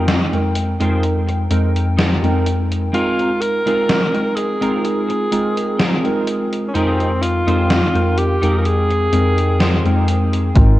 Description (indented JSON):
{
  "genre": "vaporwave",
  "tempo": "63 BPM",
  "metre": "4/4",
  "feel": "straight",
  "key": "unclear",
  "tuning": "A4 = 440 Hz",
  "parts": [
    { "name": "warbly lo-fi synth keys", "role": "accompaniment", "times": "0.0-10.8 s", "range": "F2 to G5", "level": "-17 LUFS", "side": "equal", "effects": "analog chorus" },
    { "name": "clean electric guitar", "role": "riff", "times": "0.0-10.1 s", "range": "C4 to C5", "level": "-26 LUFS", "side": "right 1 dB", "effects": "ensemble chorus, low-pass filter, tape echo" },
    { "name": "gated 80s digital drum machine", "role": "drums", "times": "0.1-10.8 s", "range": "hi-hat, snare drum", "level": "-21 LUFS", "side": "equal", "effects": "gated reverb, gated reverb snare" },
    { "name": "edgy alto saxophone", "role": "melody", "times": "2.9-10.1 s", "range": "C4 to Bb4", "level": "-20 LUFS", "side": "equal", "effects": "vintage 12-bit sampler grit, tape echo" },
    { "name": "slap-like FM bass", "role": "bass", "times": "10.6-10.8 s", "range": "Ab1", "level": "-11 LUFS", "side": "equal", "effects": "none" },
    { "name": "electronic kick drum", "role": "drums", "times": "10.6-10.8 s", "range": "none", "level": "-12 LUFS", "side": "equal", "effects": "none" }
  ],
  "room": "moderate lush hall reverb, RT60 2.6 s",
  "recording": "cassette tape",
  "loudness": "-15 LUFS",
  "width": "side -16 dB against mid",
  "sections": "0.0-10.6 A section",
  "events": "none",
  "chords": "0.0 Fm11; 2.9 Ab69; 6.7 Fm11",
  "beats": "0.08 1.03 1.99 | 2.94 3.89 4.84 5.80 | 6.75 7.70 8.65 9.61 | 10.56"
}